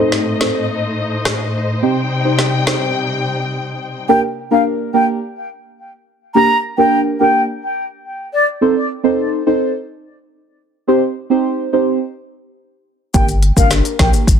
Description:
dancehall; 106 BPM; 4/4; straight; G minor; A4 = 440 Hz
deep mellow chord stab; accompaniment; 0.0-14.3 s; Bb3 to C5; -16 LUFS; right 1 dB; chorus, phaser, low-pass filter
dark studio string section; sustained chords; 0.0-4.1 s; A2 to G5; -19 LUFS; left 2 dB; sidechain pumping, low-pass filter
afro-pop drum kit; drums; 0.1-2.8, 13.1-14.4 s; hi-hat, kick drum, rim click, snare drum; -16 LUFS; equal; soft clipping on snare, vintage 12-bit sampler grit
mellow concert flute; melody; 4.1-8.4, 13.1-14.1 s; D5 to Bb5; -16 LUFS; equal; low-pass filter, digital delay
saturated sub bass; bass; 13.1-14.4 s; G1 to Bb1; -15 LUFS; equal
maracas; percussion; 13.1-14.4 s; -25 LUFS; left 7 dB
light reverb, small room ambience; dense, heavily limited modern master; -14 LUFS; side -7 dB against mid
0.0-4.1 A section; 4.1-14.4 B section
filter sweep 0.0-4.1; break 3.5-4.1
0.0 Adim; 1.8 Cm; 4.1 Gm; 8.6 Adim; 10.9 Cm; 13.1 Gm
0.12 0.69 1.26 | 1.82 2.39 2.96 3.52 | 4.09 4.65 5.22 5.79 | 6.35 6.92 7.48 8.05 | 8.62 9.18 9.75 10.31 | 10.88 11.45 12.01 12.58 | 13.14 13.71 14.28

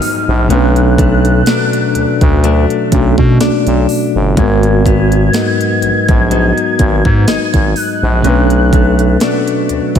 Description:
contemporary R&B; 62 BPM; 4/4; swing 54% on 16ths; A4 = 440 Hz
warm velvety synth lead; melody; 0.0-9.7 s; E#6 to G#6; -20 LUFS; equal; chorus, diffuse ambient delay
mellow tine electric piano; accompaniment; 0.0-10.0 s; G#2 to B4; -15 LUFS; right 1 dB; medium stereo tremolo
direct-recorded clean electric guitar; arpeggios; 0.0-10.0 s; G#2 to D#4; -17 LUFS; left 8 dB; lush chorus, diffuse ambient delay
trap drum kit; drums; 0.0-10.0 s; hi-hat, kick drum, snare drum; -15 LUFS; right 1 dB; overdrive
downlifter; sound effects; 0.0-4.4 s; -31 LUFS; equal
growling FM bass; bass; 0.3-10.0 s; G1 to B2; -12 LUFS; right 1 dB
moderate lush hall reverb, RT60 2.7 s; dreamy mix soaked in reverb; -9 LUFS; side -8 dB against mid
0.0-10.0 A section
0.0 G#m7; 0.5 Bm7; 4.4 G#m7; 8.2 Bm7
| 0.50 1.47 2.44 3.40 | 4.37 5.34 6.31 7.28 | 8.24 9.21

